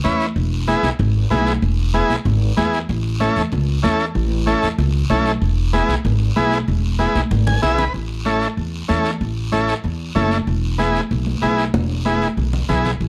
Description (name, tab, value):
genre	latin, cumbia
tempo	190 BPM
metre	4/4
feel	straight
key	A major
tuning	A4 = 441 Hz
part	combo organ	accompaniment	0.0-12.9 s	B3 to G#5	-22 LUFS	equal	none
part	upright bass	bass	0.0-13.1 s	E1 to E2	-22 LUFS	equal	none
part	congas	percussion	0.0-12.9 s	none	-27 LUFS	equal	none
part	guiro	percussion	0.0-13.1 s	none	-36 LUFS	equal	none
room	light reverb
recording	dark, warm production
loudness	-19 LUFS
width	mono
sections	0.0-7.9 A section; 7.9-13.1 B section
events	drum fill 7.0-7.9, 11.7-13.0; transistor combo organ fill 7.3-7.9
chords	0.4 E; 2.9 A; 5.4 E; 7.9 A; 10.5 E